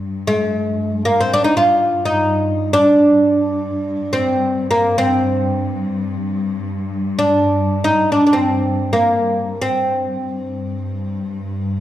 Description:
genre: Arabic maqam ensemble.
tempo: free time.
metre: none.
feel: none.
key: G maqam bayati.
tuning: A4 = 440 Hz.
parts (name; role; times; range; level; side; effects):
warm studio cello section; drone; 0.0-11.8 s; G2; -23 LUFS; left 1 dB; none.
oud; melody; 0.3-11.8 s; Ab3+50c to F4; -15 LUFS; equal; none.
room: moderate recital hall reverb, RT60 1.5 s.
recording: none.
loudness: -15 LUFS.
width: side -12 dB against mid.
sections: 0.0-11.8 A section.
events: none.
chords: none.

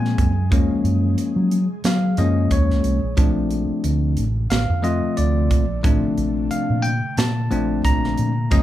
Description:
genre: electric jazz fusion.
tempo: 90 BPM.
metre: 4/4.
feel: swing 56% on 16ths.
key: unclear.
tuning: A4 = 440 Hz.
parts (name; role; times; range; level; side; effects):
bell-like tine electric piano; accompaniment; 0.0-8.6 s; F3 to Bb5; -22 LUFS; left 2 dB; none.
ethereal airy pad; sustained chords; 0.0-8.6 s; C3 to Ab4; -33 LUFS; right 1 dB; ensemble chorus, built-in reverb, tremolo.
fingered electric bass; bass; 0.0-8.6 s; Gb1 to Gb3; -21 LUFS; equal; none.
crisp fusion drum kit; drums; 0.1-8.6 s; hi-hat, kick drum, snare drum; -21 LUFS; right 1 dB; none.
room: light reverb.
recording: band playing live in one room, faint mains hum.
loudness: -17 LUFS.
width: side -13 dB against mid.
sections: 0.0-8.6 A section.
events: none.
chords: 0.0 Gbmaj9; 3.2 Bbmaj9.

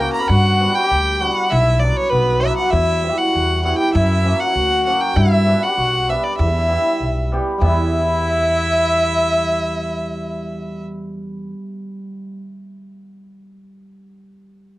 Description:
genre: klezmer.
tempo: 98 BPM.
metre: 2/4.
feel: straight.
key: E minor.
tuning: A4 = 440 Hz.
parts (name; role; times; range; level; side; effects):
clear violin; melody; 0.0-10.8 s; B4 to B5; -19 LUFS; right 1 dB; cassette tape.
brilliant trombone; second line; 0.0-10.8 s; A#3 to A#4; -22 LUFS; left 2 dB; cassette tape.
cimbalom; accompaniment; 0.0-12.3 s; F#3 to G4; -25 LUFS; right 1 dB; cassette tape.
upright bass; bass; 0.0-11.5 s; B1 to G2; -20 LUFS; equal; none.
room: moderate booth ambience, RT60 0.2 s.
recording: home recording on cassette.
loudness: -15 LUFS.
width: side -17 dB against mid.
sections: 0.0-7.6 A section; 7.6-10.1 B section.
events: none.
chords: 0.3 G; 1.5 Bm; 2.7 Em; 3.9 F#; 5.2 G; 6.4 Em.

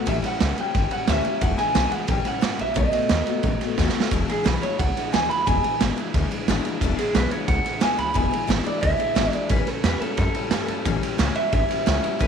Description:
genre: rockabilly.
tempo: 178 BPM.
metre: 4/4.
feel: straight.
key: E mixolydian.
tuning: A4 = 440 Hz.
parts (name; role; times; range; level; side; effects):
electric guitar through a small old amp; melody; 0.0-12.3 s; G#4 to B5; -25 LUFS; right 1 dB; spring reverb, tape echo.
picked steel-string acoustic guitar; accompaniment; 0.0-12.3 s; E2 to F#4; -28 LUFS; left 13 dB; none.
upright bass; bass; 0.0-12.3 s; E1 to G2; -26 LUFS; left 1 dB; none.
raw garage drum kit; drums; 0.1-12.3 s; kick drum, ride cymbal, snare drum; -24 LUFS; right 4 dB; none.
room: light reverb.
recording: 1960s-style stereo.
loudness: -20 LUFS.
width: side -7 dB against mid.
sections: 0.0-4.1 A section; 4.1-12.3 B section.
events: drum fill 3.8-4.1; clean electric guitar solo 4.1-12.3.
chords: 0.1 A7; 1.4 E7; 2.1 A7; 2.8 B7; 4.1 E7; 9.5 A7.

